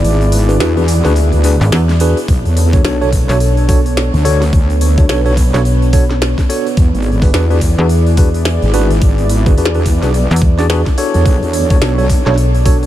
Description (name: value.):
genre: glitch hop.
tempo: 107 BPM.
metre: 4/4.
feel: swing 60% on 16ths.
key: B dorian.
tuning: A4 = 440 Hz.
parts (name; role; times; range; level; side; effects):
warm analog pad; sustained chords; 0.0-12.9 s; B3 to D5; -20 LUFS; equal; chorus, vintage 12-bit sampler grit, sidechain pumping.
wobble bass; bass; 0.0-12.2 s; G#1 to E2; -13 LUFS; equal; chorus, overdrive.
glitchy drum kit; drums; 0.0-12.9 s; hi-hat, snare drum; -22 LUFS; equal; none.
bright tine electric piano; stabs; 0.5-12.8 s; D4 to D5; -18 LUFS; equal; medium stereo tremolo, sidechain pumping, ping-pong delay.
slap-like FM bass; bass; 1.6-12.9 s; G#1 to E2; -12 LUFS; equal; tube saturation.
electronic kick drum; drums; 2.3-12.8 s; none; -12 LUFS; equal; none.
room: light reverb.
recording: none.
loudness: -10 LUFS.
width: side -13 dB against mid.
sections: 0.0-12.9 A section.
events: break 0.0-2.3.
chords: 0.0 E7; 2.3 Bm9; 6.8 E7; 11.3 Bm9.